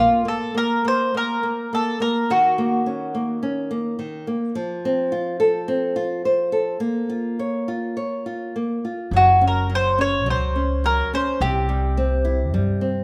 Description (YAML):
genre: fado-style ballad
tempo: 106 BPM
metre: 4/4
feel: rubato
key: Bb harmonic minor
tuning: A4 = 440 Hz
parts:
  - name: mandolin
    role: melody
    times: 0.0-3.4, 9.2-12.5 s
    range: F4 to Db5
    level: -22 LUFS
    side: equal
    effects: none
  - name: nylon-string guitar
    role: accompaniment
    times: 0.0-13.0 s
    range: C3 to Db5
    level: -26 LUFS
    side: equal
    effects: none
  - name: upright bass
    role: bass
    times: 9.1-13.0 s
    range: Gb1 to G2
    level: -25 LUFS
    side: equal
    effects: none
room: moderate scoring stage reverb, RT60 1.9 s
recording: none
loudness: -22 LUFS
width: mono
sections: 0.0-13.0 A section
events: none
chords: 0.0 N.C.; 2.3 Ebm7; 4.5 F; 6.8 Bbm; 9.1 Gb5; 11.4 C